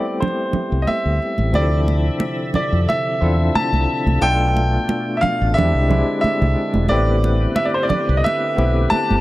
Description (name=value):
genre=lush 1970s-style soul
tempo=90 BPM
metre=4/4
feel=swing 54% on 16ths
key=A minor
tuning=A4 = 440 Hz
part: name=clear baby grand piano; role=melody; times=0.0-9.2 s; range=C5 to A5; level=-21 LUFS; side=equal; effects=tape echo
part: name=barky tine electric piano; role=accompaniment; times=0.0-9.2 s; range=F3 to A4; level=-23 LUFS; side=left 2 dB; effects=fast tremolo
part: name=congas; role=percussion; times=0.2-9.2 s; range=none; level=-23 LUFS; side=right 3 dB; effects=none
part: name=fingered electric bass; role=bass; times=0.5-9.2 s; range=E1 to F2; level=-18 LUFS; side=equal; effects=none
part: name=bright tonewheel organ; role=sustained chords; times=1.5-9.2 s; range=B2 to E5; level=-27 LUFS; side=right 1 dB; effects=fast rotary speaker, overdrive, chorus vibrato
room=small room ambience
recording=none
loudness=-16 LUFS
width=side -17 dB against mid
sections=0.0-1.5 A section; 1.5-9.2 B section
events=none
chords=0.0 Am9; 1.5 Dm9; 4.2 Bm7b5; 5.6 E7alt; 6.9 Am9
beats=0.21 0.88 | 1.55 2.22 2.89 3.56 | 4.22 4.89 5.56 6.23 | 6.90 7.57 8.24 8.91